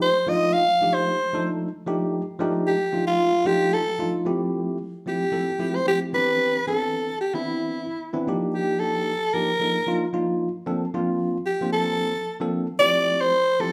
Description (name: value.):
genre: jazz.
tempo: 112 BPM.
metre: 4/4.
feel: straight.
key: unclear.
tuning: A4 = 440 Hz.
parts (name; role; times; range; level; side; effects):
growling soprano saxophone; melody; 0.0-13.7 s; E4 to F5; -24 LUFS; equal; none.
bell-like tine electric piano; accompaniment; 0.0-13.7 s; E3 to C5; -28 LUFS; equal; none.
room: moderate large studio reverb, RT60 0.9 s.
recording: band playing live in one room.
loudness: -24 LUFS.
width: mono.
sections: 0.0-4.3 A section; 4.3-13.7 B section.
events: none.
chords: 0.0 F13; 4.3 Fmaj9; 6.1 Cmaj9; 8.3 Ebmaj9; 10.7 Bbmaj9; 12.8 Fmaj9.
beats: | 0.00 0.53 1.06 1.60 | 2.13 2.66 3.20 3.73 | 4.26 4.80 5.33 5.87 | 6.40 6.93 7.47 8.00 | 8.53 9.07 9.60 10.13 | 10.67 11.20 11.73 12.27 | 12.80 13.34.